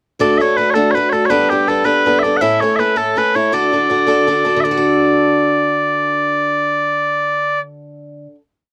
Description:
celtic folk, Celtic jig; 108 BPM (dotted quarters); 6/8; straight; D major; A4 = 438 Hz
mellow small bagpipes; melody; 0.2-7.6 s; G4 to F#5; -17 LUFS; equal
picked swing-style acoustic guitar; accompaniment; 0.2-8.4 s; A2 to A4; -19 LUFS; equal
light reverb; dark, warm production; -15 LUFS; mono
0.2-4.6 A section; 4.6-6.8 final chord
0.2 D; 1.3 Gadd9; 2.4 A; 3.5 D

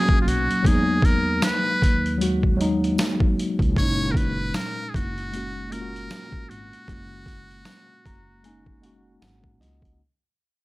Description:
lo-fi hip hop; 77 BPM; 4/4; swing 57% on 16ths; F# mixolydian; A4 = 440 Hz
trumpet with metal mute; melody; 0.0-9.2 s; E#4 to C#5; -28 LUFS; equal; analog delay
mellow tine electric piano; accompaniment; 0.0-10.0 s; A#2 to A#5; -26 LUFS; left 1 dB; medium stereo tremolo, cassette tape
boom bap sampler-style drum kit; drums; 0.1-10.0 s; hi-hat, kick drum, snare drum; -23 LUFS; equal
upright bass; bass; 0.3-10.0 s; F#1 to E2; -28 LUFS; equal
tambourine; percussion; 1.4-9.4 s; -41 LUFS; right 3 dB
light reverb; dry, gritty hardware recording; -20 LUFS; side -19 dB against mid
0.0-10.0 A section
fade-out 0.0-10.0
0.0 Bmaj7; 0.6 Emaj9#11; 3.8 F#69

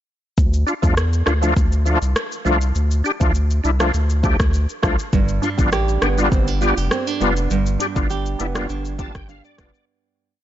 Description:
dancehall; 101 BPM; 4/4; straight; D dorian; A4 = 439 Hz
saturated sub bass; bass; 0.4-9.7 s; F1 to E2; -20 LUFS; equal
afro-pop drum kit; drums; 0.4-9.9 s; hi-hat, kick drum, rim click, shaker; -21 LUFS; equal; soft clipping on snare
bright tonewheel organ; accompaniment; 0.7-9.9 s; F3 to A5; -23 LUFS; left 2 dB; chorus vibrato, fast rotary speaker, sidechain pumping
nylon-string guitar; arpeggios; 5.1-10.4 s; G2 to G4; -24 LUFS; right 7 dB
little or no reverb; blown-out, overdriven recording, overdrive, nothing above 7.7 kHz; -17 LUFS; side -12 dB against mid
0.4-9.9 verse
fade-out 7.5-9.9; tonewheel organ fill 8.7-9.9
0.4 Dm; 5.1 G7

